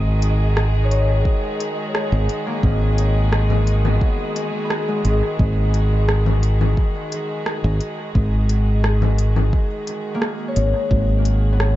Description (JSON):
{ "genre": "ambient dub", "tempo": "87 BPM", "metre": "4/4", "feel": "straight", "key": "G# minor", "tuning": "A4 = 441 Hz", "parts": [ { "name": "rich chamber string section", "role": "sustained chords", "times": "0.0-11.8 s", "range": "D#3 to G#4", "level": "-26 LUFS", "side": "equal", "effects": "none" }, { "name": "concert harp", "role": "arpeggios", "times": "0.0-11.8 s", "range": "G#3 to D#6", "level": "-28 LUFS", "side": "left 2 dB", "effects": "tape echo" }, { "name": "fingered electric bass", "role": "bass", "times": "0.0-11.8 s", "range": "G#1", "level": "-17 LUFS", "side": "equal", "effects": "tube saturation" }, { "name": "wind-like tuned noise texture", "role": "texture", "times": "0.0-11.8 s", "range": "D#5", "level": "-34 LUFS", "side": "equal", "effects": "built-in reverb" }, { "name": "organic electronic drum kit", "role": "drums", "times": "0.2-11.7 s", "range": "congas, hi-hat, rim click", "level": "-26 LUFS", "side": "left 1 dB", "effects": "dub echo" }, { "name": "electronic kick drum", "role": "drums", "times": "1.3-11.1 s", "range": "none", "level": "-20 LUFS", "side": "equal", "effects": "none" } ], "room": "digital ambience", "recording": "dark, warm production, nothing above 7.8 kHz", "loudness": "-17 LUFS", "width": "side -15 dB against mid", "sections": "0.0-11.8 A section", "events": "none", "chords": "0.0 G#m7", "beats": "0.57 1.25 1.95 | 2.63 3.32 4.01 4.70 | 5.39 6.08 6.77 7.46 | 8.15 8.84 9.53 10.22 | 10.91 11.60" }